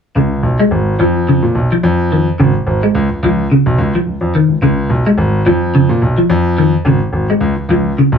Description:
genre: afrobeat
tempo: 108 BPM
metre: 4/4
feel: swing 55% on 16ths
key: Db mixolydian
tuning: A4 = 439 Hz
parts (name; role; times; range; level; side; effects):
- semi-hollow electric guitar; arpeggios; 0.2-8.2 s; Db3 to Ab3; -13 LUFS; equal; ensemble chorus
- warm grand piano; bass; 0.2-8.2 s; Ab1 to Bb2; -14 LUFS; equal; none
room: moderate small room reverb, RT60 0.6 s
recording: none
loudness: -11 LUFS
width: side -7 dB against mid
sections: 0.2-8.2 A section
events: none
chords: 0.2 Db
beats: | 0.16 0.72 1.28 1.84 | 2.40 2.95 3.51 4.07 | 4.63 5.19 5.74 6.30 | 6.86 7.42 7.97

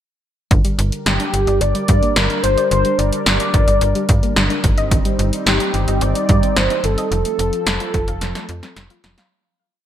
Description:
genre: synth-pop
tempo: 109 BPM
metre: 4/4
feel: straight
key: G minor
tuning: A4 = 440 Hz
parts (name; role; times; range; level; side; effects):
- warm analog pad; sustained chords; 0.5-9.3 s; F3 to Bb4; -25 LUFS; right 2 dB; chorus, phaser
- soft round pluck; arpeggios; 0.5-9.3 s; D3 to F5; -26 LUFS; left 2 dB; chorus, digital delay
- slap-like FM bass; bass; 0.5-9.2 s; F1 to G2; -20 LUFS; equal; none
- punchy analog drum machine; drums; 0.5-9.3 s; hi-hat, kick drum, snare drum; -18 LUFS; equal; gated reverb
- warm velvety synth lead; melody; 1.1-9.0 s; G4 to D5; -20 LUFS; left 1 dB; chorus
room: light reverb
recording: bright 1980s-style digital production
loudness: -14 LUFS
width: side -10 dB against mid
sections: 0.5-9.3 verse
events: fade-out 7.1-9.3; drum fill 8.2-9.3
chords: 0.5 Gm; 4.6 Cm/G; 7.1 F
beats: | 0.51 1.06 1.61 2.16 | 2.71 3.26 3.81 4.36 | 4.91 5.46 6.01 6.57 | 7.12 7.67 8.22 8.77

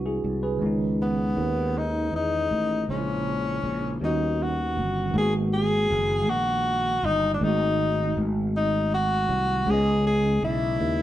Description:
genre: slow six-eight R&B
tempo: 53 BPM (dotted quarters)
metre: 6/8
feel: straight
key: G# minor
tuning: A4 = 441 Hz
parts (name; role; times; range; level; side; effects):
- tine electric piano; accompaniment; 0.0-11.0 s; C#3 to D#5; -29 LUFS; right 1 dB; medium stereo tremolo
- sustaining fretless electric bass; bass; 0.0-11.0 s; F#1 to E2; -27 LUFS; equal; none
- breathy tenor saxophone; melody; 1.0-11.0 s; B3 to G#4; -25 LUFS; left 1 dB; none
room: light reverb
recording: band playing live in one room, nothing above 10.9 kHz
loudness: -22 LUFS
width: side -13 dB against mid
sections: 0.0-5.1 A section; 5.1-11.0 B section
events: none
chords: 0.0 G#7alt; 0.6 C#m9; 2.9 A#m7b5; 4.0 D#7alt; 5.1 G#m9; 7.4 G#7b9; 9.7 C#m9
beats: | 0.61 1.74 | 2.88 4.01 | 5.14 6.27 | 7.40 8.54 | 9.67 10.80

